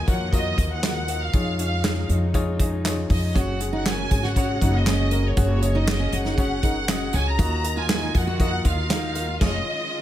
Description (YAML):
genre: piano-driven pop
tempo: 119 BPM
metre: 4/4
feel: straight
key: F# major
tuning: A4 = 442 Hz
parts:
  - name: warm studio violin section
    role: melody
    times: 0.0-10.0 s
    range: C#5 to A#5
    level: -28 LUFS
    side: right 1 dB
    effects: none
  - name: warm baby grand piano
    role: accompaniment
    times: 0.0-10.0 s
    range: D#3 to E#5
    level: -30 LUFS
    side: left 4 dB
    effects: none
  - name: warm studio string section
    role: sustained chords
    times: 0.0-10.0 s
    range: C#3 to G#4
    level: -35 LUFS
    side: equal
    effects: none
  - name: upright bass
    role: bass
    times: 0.0-9.6 s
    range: E#1 to E#2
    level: -24 LUFS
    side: equal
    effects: none
  - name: unplugged drum kit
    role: drums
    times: 0.1-9.6 s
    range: crash cymbal, handclaps, hi-hat, kick drum, snare drum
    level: -24 LUFS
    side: equal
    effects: none
  - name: fingerpicked steel-string acoustic guitar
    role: riff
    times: 3.4-9.3 s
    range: C#4 to F#4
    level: -31 LUFS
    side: right 4 dB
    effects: none
room: studio ambience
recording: none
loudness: -20 LUFS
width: side -12 dB against mid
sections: 0.0-10.0 A section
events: band accent 9.4-10.0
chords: 0.0 D#madd9; 1.3 C#add9/E#; 3.4 F#sus2; 7.4 D#madd9; 9.4 C#add9/E#